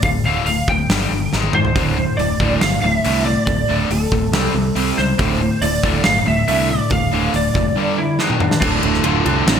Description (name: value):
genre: hard rock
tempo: 140 BPM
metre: 4/4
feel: straight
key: D minor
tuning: A4 = 441 Hz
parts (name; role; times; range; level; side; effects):
- lightly driven lead guitar; melody; 0.0-9.6 s; C4 to G5; -21 LUFS; right 1 dB; ensemble chorus
- tight distorted guitar; riff; 0.0-9.6 s; D2 to C4; -21 LUFS; left 9 dB; distortion
- modern bright picked electric bass; bass; 0.0-9.6 s; D1 to G#2; -22 LUFS; right 1 dB; none
- huge arena drum kit; drums; 0.0-9.6 s; crash cymbal, hi-hat, kick drum, ride cymbal, snare drum, toms; -20 LUFS; right 1 dB; gated reverb
- overdriven semi-hollow guitar; riff; 1.8-9.6 s; D2 to C4; -23 LUFS; right 10 dB; lush chorus
room: light reverb, small room ambience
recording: bright 1980s-style digital production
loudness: -15 LUFS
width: side -8 dB against mid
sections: 0.0-8.6 A section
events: drum fill 1.3-1.8, 8.2-8.6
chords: 0.0 D5; 0.9 G5; 1.3 G#5; 1.8 D5; 4.3 C5; 5.2 Dm; 7.8 G5; 8.2 G#5; 8.6 D5